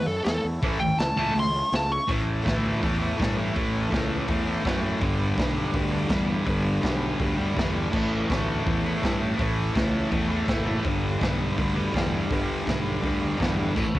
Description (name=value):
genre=garage rock duo or trio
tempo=165 BPM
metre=4/4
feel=straight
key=A mixolydian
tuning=A4 = 442 Hz
part: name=fuzz lead guitar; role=melody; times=0.0-2.1 s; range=A4 to C#6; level=-26 LUFS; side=equal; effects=distortion, cassette tape
part: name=combo organ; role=sustained chords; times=0.0-14.0 s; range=E4 to B5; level=-39 LUFS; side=equal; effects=none
part: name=fuzz fingered electric bass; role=bass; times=0.0-14.0 s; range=F#1 to G2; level=-30 LUFS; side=equal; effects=overdrive
part: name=raw garage drum kit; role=drums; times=0.3-14.0 s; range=crash cymbal, hi-hat, kick drum, snare drum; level=-29 LUFS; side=equal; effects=cassette tape
part: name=thick fuzz guitar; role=riff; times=0.6-14.0 s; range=G2 to A3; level=-25 LUFS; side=equal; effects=distortion
room=light reverb, studio ambience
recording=home recording on cassette, lossy compression artefacts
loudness=-23 LUFS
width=side -16 dB against mid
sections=0.0-2.1 A section; 2.1-13.8 B section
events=lead electric guitar solo 0.0-2.1; transistor combo organ fill 10.3-10.8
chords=0.0 A; 5.0 G; 7.9 A; 10.8 G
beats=0.27 | 0.63 1.00 1.36 1.73 | 2.09 2.46 2.83 3.19 | 3.56 3.92 4.29 4.65 | 5.02 5.38 5.75 6.11 | 6.48 6.84 7.21 7.57 | 7.94 8.30 8.66 9.03 | 9.39 9.76 10.12 10.48 | 10.85 11.21 11.58 11.94 | 12.30 12.67 13.03 13.40 | 13.76